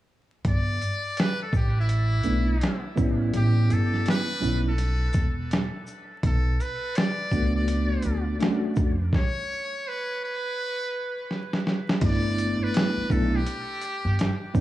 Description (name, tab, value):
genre	hip hop, jazz-hop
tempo	83 BPM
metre	4/4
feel	swing 62% on 16ths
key	unclear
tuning	A4 = 440 Hz
part	upright bass	bass	0.4-14.6 s	E1 to E#2	-25 LUFS	equal	none
part	dusty soul sampler-style drum kit	drums	0.4-14.6 s	crash cymbal, hi-hat, kick drum, shaker, snare drum	-25 LUFS	equal	none
part	trumpet with metal mute	melody	0.5-14.6 s	E4 to D5	-31 LUFS	equal	dub echo
part	mellow tine electric piano	accompaniment	2.2-14.6 s	G3 to F#4	-27 LUFS	equal	medium stereo tremolo
room	light reverb, digital ambience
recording	echo-heavy mix, vinyl crackle, studio reverb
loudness	-23 LUFS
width	side -14 dB against mid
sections	0.4-12.0 A section; 12.0-14.6 B section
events	stop 9.1-12.0; drum fill 11.3-12.0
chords	0.4 G6; 3.0 A9; 6.2 Bm7; 9.1 N.C.; 12.0 G6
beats	| 0.45 1.17 1.90 2.62 | 3.34 4.06 4.79 5.51 | 6.23 6.96 7.68 8.40 | 9.12 9.85 10.57 11.29 | 12.02 12.74 13.46 14.18